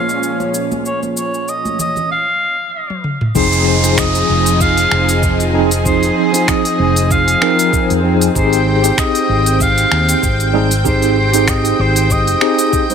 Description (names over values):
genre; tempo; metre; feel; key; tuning
sunset chillout; 96 BPM; 4/4; swing 55% on 16ths; F minor; A4 = 442 Hz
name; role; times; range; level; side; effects
clear soprano saxophone; melody; 0.0-12.9 s; C5 to F5; -18 LUFS; left 1 dB; ping-pong delay
tine electric piano; accompaniment; 0.0-12.9 s; F3 to Db5; -17 LUFS; moving between left 3 dB and right 7 dB; medium stereo tremolo, auto-pan
lush unison pad; sustained chords; 0.0-12.9 s; Bb2 to G5; -21 LUFS; equal; chorus
smooth R&B drum kit; drums; 0.1-12.9 s; finger snaps, hi-hat, shaker, toms; -20 LUFS; equal; none
congas; percussion; 0.4-2.1 s; none; -27 LUFS; right 5 dB; none
fretless electric bass; bass; 3.4-12.3 s; F1 to F2; -17 LUFS; equal; none
electronic kick drum; drums; 3.4-12.9 s; none; -19 LUFS; equal; none
downlifter; sound effects; 3.4-8.4 s; none; -23 LUFS; right 2 dB; none
room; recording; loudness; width
light reverb; none; -12 LUFS; side -7 dB against mid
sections
0.0-3.4 A section; 3.4-12.9 B section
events
drum fill 2.9-3.4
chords
0.0 Bbm7; 3.4 Fm7; 8.4 Abmaj7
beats
0.23 | 0.85 1.48 2.10 2.73 | 3.35 3.98 4.61 5.23 | 5.86 6.48 7.11 7.73 | 8.36 8.98 9.61 10.23 | 10.86 11.48 12.11 12.73